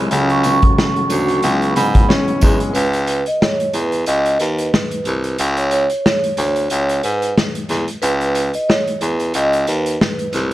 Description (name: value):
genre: hip hop, boom-bap hip-hop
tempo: 91 BPM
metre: 4/4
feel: swing 57% on 16ths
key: C# minor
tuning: A4 = 440 Hz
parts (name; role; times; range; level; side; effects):
- vibraphone with medium mallets; melody; 0.0-10.5 s; B4 to C#6; -20 LUFS; right 2 dB; high-pass filter, low-pass filter, tape echo
- warm grand piano; accompaniment; 0.0-2.8 s; C#2 to C#5; -20 LUFS; left 2 dB; cassette tape, high-pass filter, low-pass filter
- tonewheel organ; sustained chords; 0.0-2.7 s; F#3 to E5; -24 LUFS; right 1 dB; chorus vibrato, stopped rotary speaker, high-pass filter, low-pass filter
- clear baritone saxophone; bass; 0.0-10.5 s; C2 to G#2; -18 LUFS; equal; none
- vintage drum kit; drums; 0.1-10.5 s; hi-hat, kick drum, snare drum; -18 LUFS; equal; none
- tambourine; percussion; 0.4-2.6 s; none; -33 LUFS; right 4 dB; none
room: small room ambience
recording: vinyl crackle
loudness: -14 LUFS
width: side -15 dB against mid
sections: 0.0-2.8 A section; 2.8-10.5 B section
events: break 2.8-10.5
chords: 0.1 Dmaj7/C#; 1.4 F#9sus4/C#; 2.8 C#m; 4.1 Cmmaj7; 5.4 N.C.; 6.7 C#m7; 8.0 C#m; 9.3 Cmmaj7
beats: | 0.11 0.77 1.43 2.09 | 2.75 3.41 4.07 4.73 | 5.39 6.05 6.71 7.37 | 8.03 8.69 9.34 10.00